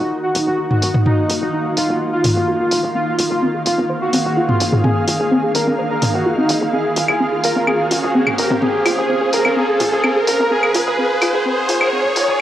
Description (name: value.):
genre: melodic techno.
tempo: 127 BPM.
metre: 4/4.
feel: straight.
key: unclear.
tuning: A4 = 440 Hz.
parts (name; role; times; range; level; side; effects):
soft supersaw; melody; 0.0-12.4 s; Eb4 to Bb4; -20 LUFS; equal; low-pass filter, cassette tape, analog delay.
soft round pluck; arpeggios; 0.0-12.2 s; C4 to Eb5; -22 LUFS; equal; analog chorus, cassette tape, analog delay.
tight sequencer bass; bass; 0.0-12.4 s; Eb1; -26 LUFS; equal; high-pass filter.
swarming drone; drone; 0.0-12.4 s; Eb3 to Bb3; -27 LUFS; left 1 dB; built-in reverb, cassette tape.
riser; sound effects; 0.1-12.4 s; none; -22 LUFS; equal; none.
ethereal airy pad; texture; 0.0-12.4 s; Db4 to Gb5; -23 LUFS; right 1 dB; ensemble chorus, built-in reverb, tremolo, cassette tape.
punchy analog drum machine; drums; 0.4-12.4 s; claves, hi-hat, toms; -19 LUFS; equal; cassette tape.
room: moderate lush hall reverb, RT60 2.2 s.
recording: home recording on cassette, high-pass filter.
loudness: -14 LUFS.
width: side -12 dB against mid.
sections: 0.0-12.4 A section.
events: build-up 0.0-12.4; filter sweep on synth arpeggio sound 0.0-12.4; filter sweep on supersaw synth 0.0-12.4; filter sweep 0.0-12.4; riser 0.1-12.4.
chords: 0.0 Ebmadd9; 3.0 Fm7/Eb; 10.5 Gb6/Eb.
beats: 0.12 0.59 | 1.06 1.53 2.00 2.48 | 2.95 3.42 3.89 4.37 | 4.84 5.31 5.78 6.26 | 6.73 7.20 7.67 8.15 | 8.62 9.09 9.56 10.04 | 10.51 10.98 11.45 11.93 | 12.40.